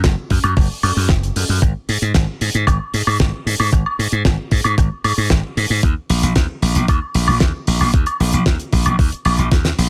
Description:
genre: nu-disco, nu disco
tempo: 114 BPM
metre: 4/4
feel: straight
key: unclear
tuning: A4 = 441 Hz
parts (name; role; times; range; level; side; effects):
- slap bass; bass; 0.0-9.9 s; F#1 to G#2; -20 LUFS; equal; none
- damped 70s drum kit; drums; 0.0-9.9 s; hi-hat, snare drum, woodblock; -23 LUFS; equal; none
- electronic kick drum; drums; 0.0-9.6 s; none; -18 LUFS; equal; overdrive
room: little or no reverb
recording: none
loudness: -17 LUFS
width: mono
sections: 0.0-9.9 A section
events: drum fill 9.5-9.9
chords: none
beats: 0.04 0.57 1.09 | 1.62 2.15 2.67 3.20 | 3.73 4.25 4.78 5.30 | 5.83 6.36 6.88 7.41 | 7.94 8.46 8.99 9.52

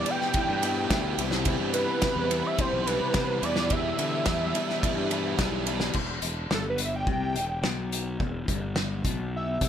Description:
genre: indie rock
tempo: 107 BPM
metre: 4/4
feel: straight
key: E minor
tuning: A4 = 440 Hz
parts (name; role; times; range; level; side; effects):
- fat analog lead; melody; 0.0-9.7 s; A4 to G5; -30 LUFS; right 2 dB; none
- electric guitar through a small old amp; riff; 0.0-9.7 s; E2 to E4; -32 LUFS; left 8 dB; none
- overdriven semi-hollow guitar; riff; 0.0-5.9 s; E2 to E4; -33 LUFS; right 10 dB; ensemble chorus
- fuzz fingered electric bass; bass; 0.0-9.7 s; E1 to D3; -32 LUFS; equal; overdrive
- loose indie drum kit; drums; 0.1-9.7 s; crash cymbal, hi-hat, kick drum, ride cymbal, snare drum; -29 LUFS; equal; none
room: light reverb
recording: none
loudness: -25 LUFS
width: side -9 dB against mid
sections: 0.0-6.0 A section; 6.0-9.7 B section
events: analog synth lead solo 6.0-9.7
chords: 0.0 Em7; 1.2 Cmaj7; 3.4 Em7; 6.0 Em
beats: 0.35 0.91 | 1.47 2.03 2.60 3.15 | 3.72 4.28 4.84 5.40 | 5.96 6.52 7.09 7.65 | 8.21 8.78 9.34

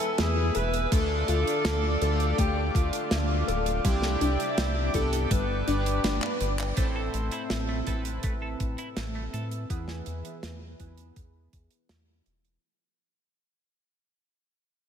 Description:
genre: synthwave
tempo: 82 BPM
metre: 4/4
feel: straight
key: A minor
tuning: A4 = 440 Hz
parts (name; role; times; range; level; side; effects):
- warm tenor saxophone; melody; 0.0-6.0 s; F4 to B4; -31 LUFS; left 1 dB; diffuse ambient delay
- chorused pulse-width pad; sustained chords; 0.0-12.6 s; C4 to E6; -34 LUFS; equal; vintage 12-bit sampler grit, sidechain pumping
- warbly dusty pluck; arpeggios; 0.0-6.8 s; G3 to B4; -35 LUFS; left 4 dB; chorus, diffuse ambient delay
- chorused polysynth; stabs; 0.0-12.6 s; G2 to G#5; -35 LUFS; right 2 dB; cassette tape, diffuse ambient delay
- tight metal drum kit; drums; 0.0-12.6 s; handclaps, hi-hat, snare drum; -33 LUFS; right 1 dB; none
- round analog bass; bass; 0.2-12.6 s; D1 to A2; -30 LUFS; equal; sidechain pumping
- electronic kick drum; drums; 0.9-11.7 s; none; -28 LUFS; equal; none
- clean electric guitar; riff; 6.8-9.5 s; A3 to A4; -42 LUFS; right 3 dB; wide subtle chorus, diffuse ambient delay
room: moderate lush hall reverb, RT60 2.4 s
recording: dreamy mix soaked in reverb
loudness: -25 LUFS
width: side -8 dB against mid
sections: 0.0-6.8 A section; 6.8-12.6 B section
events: kick drops out 6.0-6.8; drum fill 6.2-6.8; fade-out 6.8-12.6; filter sweep on analog synth bass 6.8-12.6; filter sweep on analog polysynth 6.8-12.6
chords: 0.0 E; 0.9 Dm; 3.8 Cadd9; 5.3 G; 6.8 Am; 9.7 E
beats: 0.19 | 0.92 1.65 2.38 3.11 | 3.85 4.58 5.31 6.04 | 6.77 7.50 8.24 8.97 | 9.70 10.43 11.16 11.89

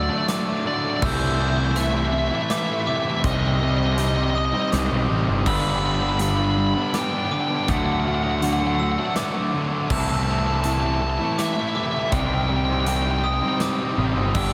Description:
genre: post-rock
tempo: 81 BPM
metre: 3/4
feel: straight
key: unclear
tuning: A4 = 439 Hz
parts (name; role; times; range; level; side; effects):
- nasal lead guitar with a parked wah; melody; 0.0-14.5 s; C5 to B5; -29 LUFS; equal; overdrive, tape echo
- glockenspiel with hard plastic mallets; arpeggios; 0.0-14.5 s; D6 to E6; -34 LUFS; equal; tape echo
- thick fuzz guitar; riff; 0.0-14.5 s; G2 to E4; -30 LUFS; equal; distortion
- fuzz picked electric bass; bass; 0.0-14.5 s; G1 to D2; -26 LUFS; equal; overdrive
- distorted electric guitar; riff; 0.1-14.5 s; G2 to E4; -29 LUFS; equal; distortion
- big rock drum kit; drums; 0.3-14.5 s; crash cymbal, hi-hat, kick drum, snare drum; -33 LUFS; equal; none
- icy glass pad; sustained chords; 14.5 s; none; barely audible; none; none
room: moderate huge ambient reverb, RT60 5.0 s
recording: dreamy mix soaked in reverb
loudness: -22 LUFS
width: mono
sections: 0.0-14.5 A section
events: none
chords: 0.0 D; 1.0 Am/C; 3.2 Cm; 5.5 G; 7.7 D; 9.9 Am/C; 12.1 Cm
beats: 0.29 | 1.03 1.77 2.51 | 3.25 3.98 4.72 | 5.46 6.21 6.95 | 7.68 8.43 9.17 | 9.91 10.65 11.39 | 12.13 12.87 13.61 | 14.35

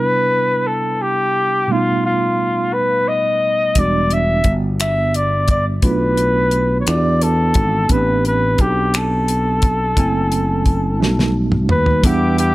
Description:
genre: slow six-eight R&B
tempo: 58 BPM (dotted quarters)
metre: 6/8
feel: straight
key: E minor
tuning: A4 = 440 Hz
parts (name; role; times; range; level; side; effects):
- warm flugelhorn; melody; 0.0-12.5 s; F4 to E5; -18 LUFS; left 1 dB; none
- mellow tine electric piano; accompaniment; 0.0-12.5 s; B2 to G#5; -21 LUFS; right 2 dB; medium stereo tremolo
- sustaining fretless electric bass; bass; 3.8-12.5 s; E1 to E2; -19 LUFS; equal; none
- damped 70s drum kit; drums; 3.8-12.5 s; finger snaps, hi-hat, kick drum, snare drum, toms; -17 LUFS; equal; none
- chamber organ, flutes; sustained chords; 12.0-12.5 s; G4 to D6; -26 LUFS; equal; none
room: small room ambience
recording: none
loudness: -14 LUFS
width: side -18 dB against mid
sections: 0.0-12.0 A section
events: drum fill 11.0-12.0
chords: 0.0 Cmaj9; 1.7 Baug7; 3.8 Em7; 5.8 Bm7b5; 6.9 E7; 7.9 Am11; 10.0 F#m7b5; 11.0 B7b13; 12.0 Em7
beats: 0.66 | 1.69 2.73 | 3.76 4.80 | 5.83 6.87 | 7.90 8.93 | 9.97 11.00 | 12.04

